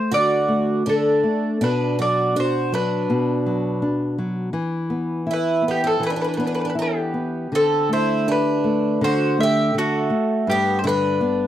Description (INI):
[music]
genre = fado-style ballad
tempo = 81 BPM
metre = 2/4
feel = rubato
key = unclear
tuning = A4 = 440 Hz
[part]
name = mandolin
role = melody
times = 0.0-11.5 s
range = F#4 to E5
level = -21 LUFS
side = left 1 dB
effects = none
[part]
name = nylon-string guitar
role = accompaniment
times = 0.0-11.5 s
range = G2 to G4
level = -22 LUFS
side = left 1 dB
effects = none
[part]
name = picked twelve-string acoustic guitar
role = second line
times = 0.1-11.5 s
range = A3 to G4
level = -26 LUFS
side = right 6 dB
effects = none
[sound]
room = light reverb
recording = dry, close 1970s-style studio recording, faint mains hum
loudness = -18 LUFS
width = side -11 dB against mid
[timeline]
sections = 0.0-11.5 A section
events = none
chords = 0.0 D; 1.6 Bm; 4.5 Em; 7.5 Dsus4; 9.0 D; 10.5 G